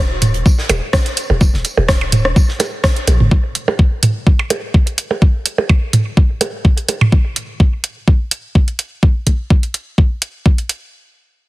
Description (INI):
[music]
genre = minimal techno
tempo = 126 BPM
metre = 4/4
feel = swing 54% on 16ths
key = Eb minor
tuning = A4 = 441 Hz
[part]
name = punchy sub bass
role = bass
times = 0.0-3.3 s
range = Eb1 to Bb1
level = -17 LUFS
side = equal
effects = sidechain pumping
[part]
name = garage drum kit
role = drums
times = 0.2-10.8 s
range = hi-hat, rim click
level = -18 LUFS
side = right 1 dB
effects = overdrive
[part]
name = gated 80s drum kit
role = drums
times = 0.2-3.2 s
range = hi-hat, snare drum, tambourine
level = -27 LUFS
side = right 1 dB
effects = sidechain pumping on hats, high-pass filter on hats, high-pass filter on snare, sidechain pumping on perc, high-pass filter on perc, high-pass filter on room
[part]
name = electronic toms and percussion blips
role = percussion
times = 0.2-7.1 s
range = none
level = -17 LUFS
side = right 2 dB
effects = overdrive
[part]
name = electronic kick drum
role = drums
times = 0.5-10.6 s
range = none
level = -12 LUFS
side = equal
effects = overdrive
[sound]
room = small room ambience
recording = heavily compressed radio sound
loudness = -12 LUFS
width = side -19 dB against mid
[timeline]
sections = 0.0-10.9 A section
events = none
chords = none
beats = 0.46 0.93 | 1.41 1.89 2.36 2.84 | 3.31 3.79 4.27 4.74 | 5.22 5.69 6.17 6.65 | 7.12 7.60 8.07 8.55 | 9.03 9.50 9.98 10.46